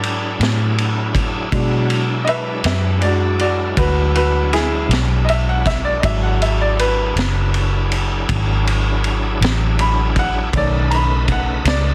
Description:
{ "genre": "slow blues", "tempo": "53 BPM (dotted quarters)", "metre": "12/8", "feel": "straight", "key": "unclear", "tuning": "A4 = 439 Hz", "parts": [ { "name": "bright upright piano", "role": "accompaniment", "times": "0.0-11.9 s", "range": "D#3 to B5", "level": "-23 LUFS", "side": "equal", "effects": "none" }, { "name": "bright tonewheel organ", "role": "sustained chords", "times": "0.0-11.9 s", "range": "C#3 to B4", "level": "-28 LUFS", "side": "equal", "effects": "slow rotary speaker, overdrive, chorus vibrato" }, { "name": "vintage muted fingered electric bass", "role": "bass", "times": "0.0-11.9 s", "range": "F#1 to B2", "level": "-21 LUFS", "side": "equal", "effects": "none" }, { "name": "vintage drum kit", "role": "drums", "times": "0.0-11.8 s", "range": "kick drum, ride cymbal, snare drum", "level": "-24 LUFS", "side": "equal", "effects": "none" } ], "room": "light reverb", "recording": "dense, heavily limited modern master", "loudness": "-17 LUFS", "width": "mono", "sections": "0.0-11.9 A section", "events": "upright piano solo 0.0-11.9", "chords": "0.0 E9; 10.5 B9", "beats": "0.40 | 1.53 2.65 3.77 4.90 | 6.02 7.15 8.28 9.40 | 10.53 11.65" }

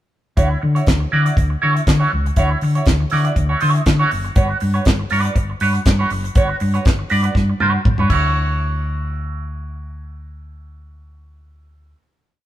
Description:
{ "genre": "disco", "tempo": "120 BPM", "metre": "4/4", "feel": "straight", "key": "D major", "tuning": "A4 = 444 Hz", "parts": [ { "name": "clean electric guitar", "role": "accompaniment", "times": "0.4-12.0 s", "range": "E4 to D5", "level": "-21 LUFS", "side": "right 3 dB", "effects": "wah" }, { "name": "hollow-body short-scale fingered electric bass", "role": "bass", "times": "0.4-11.9 s", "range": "F#1 to D3", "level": "-19 LUFS", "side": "left 1 dB", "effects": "none" }, { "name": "damped 70s drum kit", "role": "drums", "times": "0.4-8.2 s", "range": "crash cymbal, handclaps, hi-hat, kick drum, snare drum, toms", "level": "-18 LUFS", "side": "equal", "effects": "none" } ], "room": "moderate stone room reverb, RT60 1.3 s", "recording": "band playing live in one room", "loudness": "-15 LUFS", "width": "side -13 dB against mid", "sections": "0.4-8.3 breakdown; 8.3-12.3 final hit", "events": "drum fill 7.4-8.3", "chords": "0.4 Dmaj9; 4.4 Gmaj7#11; 8.1 Dmaj9", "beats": "| 0.37 0.87 1.37 1.87 | 2.37 2.87 3.37 3.87 | 4.37 4.86 5.36 5.86 | 6.36 6.86 7.35 7.85 | 8.35 8.84 9.34 9.84 | 10.33 10.83 11.33 11.82" }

